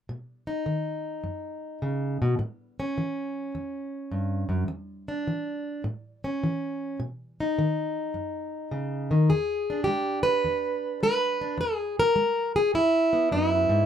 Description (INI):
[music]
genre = acoustic country blues, solo or duo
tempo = 104 BPM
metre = 4/4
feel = swing 67% on 8ths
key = unclear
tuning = A4 = 439 Hz
[part]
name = fingerpicked plugged-in steel-string acoustic guitar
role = solo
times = 0.1-13.9 s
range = E2 to B4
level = -25 LUFS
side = equal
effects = none
[sound]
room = wet booth ambience, RT60 0.2 s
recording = none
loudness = -25 LUFS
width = side -9 dB against mid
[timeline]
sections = 0.1-9.3 A section; 9.3-13.9 B section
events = none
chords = 0.1 B; 2.4 A7; 4.7 Dsus2/E; 5.8 A; 7.0 B; 9.3 E7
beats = | 0.09 0.67 1.24 1.82 | 2.40 2.97 3.55 4.12 | 4.70 5.28 5.85 6.42 | 7.00 7.57 8.15 8.72 | 9.29 9.87 10.44 11.02 | 11.59 12.16 12.74 13.31